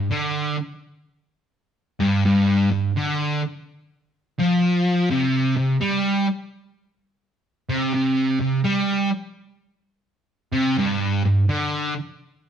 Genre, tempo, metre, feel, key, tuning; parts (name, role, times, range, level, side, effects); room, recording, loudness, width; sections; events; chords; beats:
rock; 84 BPM; 4/4; swing 65% on 8ths; A4 = 445 Hz
fuzz guitar; solo; 0.0-11.9 s; G2 to G3; -19 LUFS; equal; distortion
moderate stone room reverb, RT60 1.0 s; band playing live in one room; -19 LUFS; side -8 dB against mid
0.0-12.5 A section
0.11 0.82 1.53 | 2.25 2.96 3.67 4.38 | 5.09 5.80 6.51 7.23 | 7.94 8.65 9.36 10.06 | 10.77 11.48